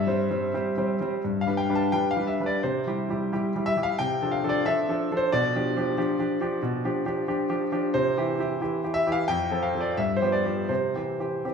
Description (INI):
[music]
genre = classical-period piano sonatina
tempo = 89 BPM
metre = 4/4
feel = uneven beats, rubato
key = C major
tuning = A4 = 440 Hz
[part]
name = clear baby grand piano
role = solo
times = 0.0-11.5 s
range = F2 to A5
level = -24 LUFS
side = equal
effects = none
[sound]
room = wet recital hall reverb, RT60 1.6 s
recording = studio reverb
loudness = -24 LUFS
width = side -6 dB against mid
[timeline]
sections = 0.0-11.5 A section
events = none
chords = 0.0 C/G; 1.2 G; 2.6 C; 4.0 Dm7/C; 5.3 G7/B; 7.9 C; 9.3 F; 10.0 G7; 10.7 C